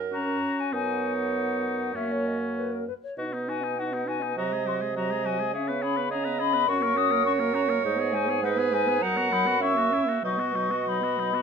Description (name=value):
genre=quick classical-period movement for wind quintet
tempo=94-106 BPM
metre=4/4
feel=rubato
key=B major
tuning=A4 = 442 Hz
part: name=clear clarinet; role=accompaniment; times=0.0-11.4 s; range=A#4 to F#5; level=-29 LUFS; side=right 9 dB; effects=none
part: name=dark bassoon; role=bass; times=0.0-11.4 s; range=F#2 to C#3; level=-31 LUFS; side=right 3 dB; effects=none
part: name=mellow hollow silver concert flute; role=melody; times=0.1-11.4 s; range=A#4 to D#6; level=-29 LUFS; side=left 8 dB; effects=none
part: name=clear oboe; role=second line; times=0.1-11.4 s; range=C#4 to B4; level=-33 LUFS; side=left 5 dB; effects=none
part: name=mellow French horn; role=accompaniment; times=0.1-11.4 s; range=F#3 to D#4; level=-31 LUFS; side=equal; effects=none
room=moderate large studio reverb, RT60 0.8 s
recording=none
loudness=-24 LUFS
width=side -6 dB against mid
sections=0.0-11.4 A section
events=none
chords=0.0 F#; 0.7 F#sus4; 2.0 F#; 3.2 B; 4.4 G#7/B#; 5.5 C#5; 6.7 F#; 7.8 G#m; 9.0 B/F#; 9.6 F#7; 10.2 B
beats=0.12 | 0.73 1.34 1.95 2.56 | 3.18 3.79 4.38 4.96 | 5.54 6.12 6.69 7.26 | 7.84 8.43 9.02 9.61 | 10.23 10.87